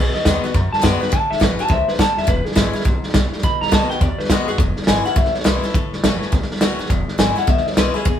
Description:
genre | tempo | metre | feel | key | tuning
rockabilly | 208 BPM | 4/4 | swing 62% on 8ths | E major | A4 = 441 Hz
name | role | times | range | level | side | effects
electric guitar through a small old amp | melody | 0.0-8.2 s | G#4 to B5 | -22 LUFS | left 1 dB | none
picked swing-style acoustic guitar | accompaniment | 0.0-8.2 s | E2 to F#4 | -25 LUFS | left 4 dB | none
upright bass | bass | 0.0-8.2 s | E1 to F#2 | -24 LUFS | equal | none
vintage drum kit | drums | 0.1-8.1 s | hi-hat, kick drum, snare drum | -18 LUFS | equal | none
room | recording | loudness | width
light reverb | band playing live in one room | -15 LUFS | side -9 dB against mid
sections
0.0-4.6 A section; 4.6-8.2 B section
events
clean electric guitar solo 0.0-4.6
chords
0.0 B6; 1.1 A6; 2.3 E6; 3.4 B6; 4.6 E6; 5.7 A6; 6.9 E6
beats
0.26 0.55 0.84 | 1.13 1.41 1.70 1.99 | 2.28 2.57 2.86 3.15 | 3.44 3.72 4.01 4.30 | 4.59 4.88 5.17 5.46 | 5.75 6.03 6.32 6.61 | 6.90 7.19 7.48 7.77 | 8.06

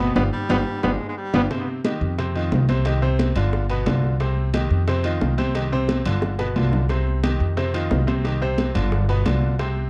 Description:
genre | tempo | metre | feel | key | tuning
latin, salsa | 178 BPM | 4/4 | straight | C minor | A4 = 440 Hz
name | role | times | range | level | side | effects
bright trombone | melody | 0.0-1.4 s | B3 | -29 LUFS | equal | tape echo
bright baby grand piano | accompaniment | 0.0-9.9 s | B2 to C5 | -28 LUFS | equal | none
upright bass | bass | 0.0-9.9 s | G1 to F2 | -24 LUFS | equal | none
bongos | percussion | 0.2-9.8 s | none | -33 LUFS | equal | none
congas | percussion | 0.2-9.9 s | none | -30 LUFS | equal | none
timbales | percussion | 0.2-9.8 s | none | -36 LUFS | equal | none
clear baritone saxophone | second line | 0.3-1.5 s | G3 to Ab3 | -32 LUFS | equal | none
room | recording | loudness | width
light reverb | cassette tape | -22 LUFS | mono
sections
0.0-1.5 A section; 1.5-9.9 B section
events
band accent 0.2-1.5; drum fill 0.7-1.5, 6.2-6.9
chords
0.2 G7; 1.5 Cm; 2.2 F5; 2.9 Cm; 3.5 G7; 4.2 Cm; 4.9 F5; 5.5 Cm; 6.2 G7; 6.9 Cm; 7.6 F5; 8.2 Cm; 8.9 G7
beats
| 0.16 0.50 0.83 1.17 | 1.51 1.84 2.18 2.52 | 2.85 3.19 3.53 3.87 | 4.20 4.54 4.88 5.21 | 5.55 5.89 6.22 6.56 | 6.90 7.23 7.57 7.91 | 8.25 8.58 8.92 9.26 | 9.60

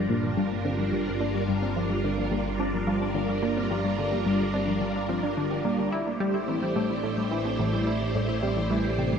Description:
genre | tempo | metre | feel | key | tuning
ambient, sequencer-driven space music | 108 BPM | 4/4 | straight | G dorian | A4 = 440 Hz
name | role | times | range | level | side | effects
phased string machine | sustained chords | 0.0-9.2 s | G3 to C5 | -29 LUFS | equal | ensemble chorus, phaser, shimmer reverb
thumb-piano-like synth pluck | arpeggios | 0.0-9.2 s | E3 to G4 | -32 LUFS | left 1 dB | chorus, auto-pan, shimmer reverb, tape echo
fat analog bass | bass | 0.0-9.2 s | G1 to A1 | -33 LUFS | equal | none
wind-like tuned noise texture | texture | 0.0-9.2 s | D4 to D5 | -36 LUFS | right 2 dB | built-in reverb, shimmer reverb
tight sequenced synth | riff | 0.1-9.1 s | G2 to E4 | -29 LUFS | equal | chorus, phaser, shimmer reverb, tape echo
room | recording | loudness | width
moderate plate reverb, RT60 2.9 s | echo-heavy mix | -24 LUFS | side -7 dB against mid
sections
0.0-9.2 A section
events
none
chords
0.0 Gm7; 5.9 Am7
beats
0.37 0.93 | 1.48 2.04 2.59 3.15 | 3.71 4.26 4.82 5.37 | 5.93 6.48 7.04 7.59 | 8.15 8.71

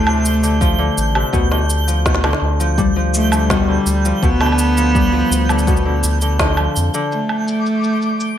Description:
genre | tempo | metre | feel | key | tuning
folktronica | 83 BPM | 4/4 | straight | unclear | A4 = 438 Hz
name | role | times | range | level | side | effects
rich cello | melody | 0.0-8.4 s | G3 to B3 | -19 LUFS | right 1 dB | plate reverb, ping-pong delay
Celtic harp | arpeggios | 0.0-7.2 s | A2 to G3 | -20 LUFS | left 4 dB | plate reverb, ping-pong delay
round analog bass | bass | 0.0-6.9 s | A1 to F2 | -18 LUFS | equal | none
twinkling granular texture | texture | 0.0-8.4 s | D6 to G6 | -27 LUFS | right 2 dB | built-in reverb
electronic woodblock, cabasa and snare drum | drums | 0.1-8.3 s | none | -22 LUFS | right 2 dB | overdrive, low-pass filter on perc, low-pass filter on snare, low-pass filter on room
electronic kick drum | drums | 0.6-6.5 s | none | -19 LUFS | equal | overdrive
room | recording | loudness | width
light reverb | none | -14 LUFS | side -10 dB against mid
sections
0.0-7.1 A section; 7.1-8.4 B section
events
band accent 6.4-6.8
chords
0.0 Dm7; 1.3 G7/D; 7.1 N.C.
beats
0.61 | 1.33 2.06 2.78 3.50 | 4.23 4.95 5.67 6.39 | 7.12 7.84

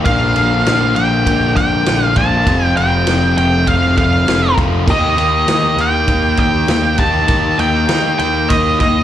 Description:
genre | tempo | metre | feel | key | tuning
classic rock | 100 BPM | 4/4 | straight | unclear | A4 = 440 Hz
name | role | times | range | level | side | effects
octave-fuzz lead guitar | melody | 0.0-9.0 s | Eb5 to A5 | -16 LUFS | right 1 dB | distortion, slapback echo, tape echo
distorted electric guitar | riff | 0.0-9.0 s | F2 to G4 | -25 LUFS | right 13 dB | overdrive, slapback echo
overdriven electric guitar | riff | 0.0-9.0 s | F2 to G4 | -18 LUFS | left 7 dB | slapback echo
fuzz picked electric bass | bass | 0.1-9.0 s | F1 to Eb2 | -18 LUFS | right 1 dB | overdrive
vintage drum kit | drums | 0.1-9.0 s | crash cymbal, kick drum, ride cymbal, snare drum | -19 LUFS | right 1 dB | none
room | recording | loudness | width
light reverb | live gig heard through the venue's PA, club ambience | -11 LUFS | side -11 dB against mid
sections
0.0-9.0 A section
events
none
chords
0.1 Bb; 2.5 F; 4.9 Eb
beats
| 0.06 0.67 1.27 1.87 | 2.47 3.08 3.68 4.28 | 4.88 5.49 6.09 6.69 | 7.30 7.90 8.51

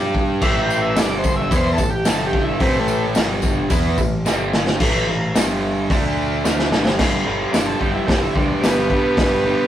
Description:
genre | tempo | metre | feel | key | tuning
garage rock duo or trio | 110 BPM | 4/4 | straight | unclear | A4 = 440 Hz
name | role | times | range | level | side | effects
raw garage guitar | riff | 0.0-9.7 s | G2 to G4 | -21 LUFS | right 1 dB | overdrive
growling picked electric bass | bass | 0.0-9.5 s | G1 to G2 | -26 LUFS | equal | overdrive
raw garage drum kit | drums | 0.1-9.3 s | crash cymbal, hi-hat, kick drum, snare drum | -20 LUFS | equal | none
overdriven combo organ | melody | 0.4-3.1, 7.5-9.7 s | G3 to G5 | -21 LUFS | equal | none
tambourine | percussion | 0.4-8.8 s | none | -34 LUFS | left 4 dB | none
room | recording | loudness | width
moderate studio reverb, RT60 0.6 s | rough rehearsal-room recording, warm saturation | -16 LUFS | side -11 dB against mid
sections
0.0-4.8 A section; 4.8-7.0 B section; 7.0-9.7 C section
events
transistor combo organ solo 0.0-4.8; drum fill 4.3-4.8, 6.4-7.0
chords
0.4 A5; 1.0 G5; 1.5 A5; 2.1 G5; 2.6 A5; 3.2 G5; 3.7 A5; 4.3 G5; 4.8 A5; 5.4 G5; 5.9 D5; 6.4 Gsus2; 7.0 G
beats
| 0.43 0.98 1.53 2.07 | 2.62 3.17 3.71 4.26 | 4.81 5.35 5.90 6.45 | 6.99 7.54 8.08 8.63 | 9.17

